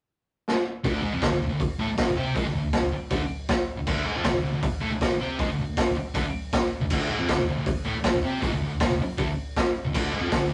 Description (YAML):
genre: garage rock duo or trio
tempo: 158 BPM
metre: 4/4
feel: straight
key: unclear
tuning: A4 = 440 Hz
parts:
  - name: raw garage drum kit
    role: drums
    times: 0.5-10.4 s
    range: crash cymbal, hi-hat, kick drum, snare drum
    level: -28 LUFS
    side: equal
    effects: vintage 12-bit sampler grit
  - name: thick fuzz guitar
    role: riff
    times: 0.8-10.5 s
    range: D2 to C4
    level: -30 LUFS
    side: equal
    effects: distortion
room: moderate studio reverb, RT60 0.5 s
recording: rough rehearsal-room recording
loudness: -26 LUFS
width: mono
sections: 0.8-10.5 A section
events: drum fill 0.5-0.8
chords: 0.0 N.C.; 0.8 D5